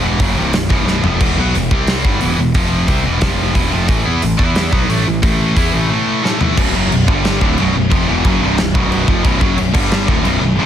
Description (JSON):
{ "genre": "heavy metal", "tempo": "179 BPM", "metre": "4/4", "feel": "straight", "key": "B minor", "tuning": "A4 = 440 Hz", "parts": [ { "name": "heavy high-gain guitar", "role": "riff", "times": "0.0-10.7 s", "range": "B1 to E4", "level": "-17 LUFS", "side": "equal", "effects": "distortion" }, { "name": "fuzz picked electric bass", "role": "bass", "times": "0.0-10.6 s", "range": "B0 to E2", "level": "-18 LUFS", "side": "equal", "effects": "overdrive" }, { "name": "big rock drum kit", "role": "drums", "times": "0.2-10.3 s", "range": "crash cymbal, hi-hat, kick drum, snare drum, toms", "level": "-17 LUFS", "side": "equal", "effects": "none" }, { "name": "overdriven electric guitar", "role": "riff", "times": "6.6-10.7 s", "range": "B1 to G3", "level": "-20 LUFS", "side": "equal", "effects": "none" } ], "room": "little or no reverb", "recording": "dense, heavily limited modern master", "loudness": "-12 LUFS", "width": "side -10 dB against mid", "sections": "0.0-6.6 A section; 6.6-10.7 B section", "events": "drum fill 0.9-1.2, 6.2-6.6", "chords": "0.0 B5; 1.2 E5; 1.7 C5; 2.0 E5; 2.6 F5; 2.9 E5; 3.2 F5; 3.6 E5; 3.9 A5; 4.4 E5; 4.7 A5; 6.6 B5; 7.1 G5; 7.4 Bm; 9.7 G5; 10.1 Bm", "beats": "0.20 0.54 0.87 | 1.21 1.55 1.88 2.22 | 2.55 2.89 3.23 3.56 | 3.90 4.23 4.57 4.90 | 5.24 5.57 5.91 6.24 | 6.57 6.91 7.24 7.58 | 7.91 8.24 8.57 8.91 | 9.24 9.57 9.91 10.24 | 10.57" }